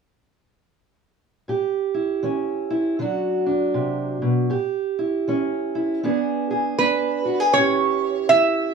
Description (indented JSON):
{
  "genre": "acoustic country blues, solo or duo",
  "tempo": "79 BPM",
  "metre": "4/4",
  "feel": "swing 62% on 8ths",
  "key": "A mixolydian",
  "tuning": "A4 = 440 Hz",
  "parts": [
    { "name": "fingerpicked steel-string acoustic guitar", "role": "accompaniment", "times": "1.5-8.7 s", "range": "A2 to G#4", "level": "-21 LUFS", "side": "right 2 dB", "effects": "none" },
    { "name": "lap resonator guitar", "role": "melody", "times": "6.8-8.7 s", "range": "B4 to E5", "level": "-18 LUFS", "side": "right 4 dB", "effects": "none" }
  ],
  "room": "moderate studio reverb, RT60 0.6 s",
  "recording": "small room ambience",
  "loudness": "-19 LUFS",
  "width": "side -5 dB against mid",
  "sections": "1.5-7.5 A section; 7.5-8.7 B section",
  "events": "none",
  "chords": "1.5 A7; 3.0 D7; 4.5 A7; 6.0 E7; 7.5 A7"
}